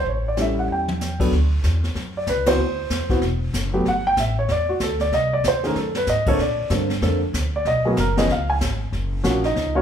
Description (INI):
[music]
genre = jazz piano trio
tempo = 189 BPM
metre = 4/4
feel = swing 62% on 8ths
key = unclear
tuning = A4 = 440 Hz
[part]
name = warm baby grand piano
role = melody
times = 0.0-9.8 s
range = D3 to G#5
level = -21 LUFS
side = equal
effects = none
[part]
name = upright bass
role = bass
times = 0.0-9.8 s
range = E1 to Bb2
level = -24 LUFS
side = equal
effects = none
[part]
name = jazz brush drum kit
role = drums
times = 0.1-9.8 s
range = brushed snare drum, crash cymbal, hi-hat, kick drum, ride cymbal, snare drum, toms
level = -27 LUFS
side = left 2 dB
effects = none
[sound]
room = moderate large studio reverb, RT60 1.2 s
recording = band playing live in one room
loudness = -19 LUFS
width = side -8 dB against mid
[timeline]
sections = 0.0-1.3 A section; 1.3-9.8 B section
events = drum fill 0.7-1.0, 5.8-6.1; band accent 2.4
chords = 0.1 A7; 1.3 D6; 2.6 D9; 3.9 Gsus2; 5.1 Cm; 5.8 F#m69; 6.4 Bbmaj9; 7.7 G#m9; 8.3 C#5; 8.9 F#maj7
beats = | 0.05 0.37 0.69 1.00 | 1.32 1.64 1.95 2.27 | 2.59 2.90 3.22 3.54 | 3.85 4.17 4.49 4.80 | 5.12 5.44 5.75 6.07 | 6.39 6.70 7.02 7.34 | 7.65 7.97 8.29 8.61 | 8.92 9.24 9.55